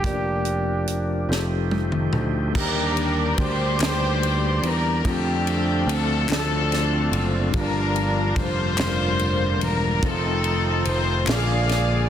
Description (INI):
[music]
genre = slow gospel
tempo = 48 BPM (dotted quarters)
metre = 6/8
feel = straight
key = unclear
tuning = A4 = 440 Hz
[part]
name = warm trumpet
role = melody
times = 0.0-1.7 s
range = G4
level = -28 LUFS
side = right 2 dB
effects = none
[part]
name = mellow tine electric piano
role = accompaniment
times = 0.0-12.1 s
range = G2 to D5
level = -29 LUFS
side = left 3 dB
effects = medium stereo tremolo
[part]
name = bright tonewheel organ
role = sustained chords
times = 0.0-12.1 s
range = D3 to D5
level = -30 LUFS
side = right 2 dB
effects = slow rotary speaker, overdrive
[part]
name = picked electric bass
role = bass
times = 0.0-12.1 s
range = E1 to F2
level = -24 LUFS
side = equal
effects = none
[part]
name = tight funk drum kit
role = drums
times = 0.0-11.9 s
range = crash cymbal, hi-hat, kick drum, ride cymbal, snare drum, toms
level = -28 LUFS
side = equal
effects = none
[part]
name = warm studio string section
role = melody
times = 2.6-12.1 s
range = C4 to F5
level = -24 LUFS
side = left 1 dB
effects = none
[part]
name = group handclap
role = percussion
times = 3.8-11.7 s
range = none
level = -34 LUFS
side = left 3 dB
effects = none
[sound]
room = light reverb, studio reverb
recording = dense, heavily limited modern master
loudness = -20 LUFS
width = side -10 dB against mid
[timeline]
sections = 0.0-2.5 A section; 2.5-12.1 B section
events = drum fill 1.3-2.5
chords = 0.0 Bb/F; 1.3 F9; 2.5 Ebmaj7; 5.0 Dm7; 7.5 Gm7; 10.0 F7; 11.3 Bb7